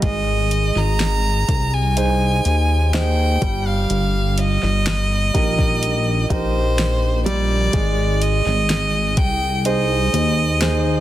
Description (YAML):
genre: pop ballad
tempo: 62 BPM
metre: 4/4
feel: straight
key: unclear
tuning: A4 = 436 Hz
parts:
  - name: clear violin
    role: melody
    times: 0.0-11.0 s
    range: C5 to Bb5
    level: -22 LUFS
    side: equal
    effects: none
  - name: clear concert grand piano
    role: accompaniment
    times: 0.0-11.0 s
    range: G3 to C5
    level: -24 LUFS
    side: right 3 dB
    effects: none
  - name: chorused synth bass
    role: bass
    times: 0.0-11.0 s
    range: G1 to Eb2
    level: -19 LUFS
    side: equal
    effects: none
  - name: smooth R&B drum kit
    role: drums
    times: 0.0-10.8 s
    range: hi-hat, kick drum, snare drum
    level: -23 LUFS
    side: equal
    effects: none
room: little or no reverb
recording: dense, heavily limited modern master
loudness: -16 LUFS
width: side -13 dB against mid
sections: 0.0-11.0 A section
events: none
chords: 0.0 Ab; 3.4 Eb/G; 7.7 Ab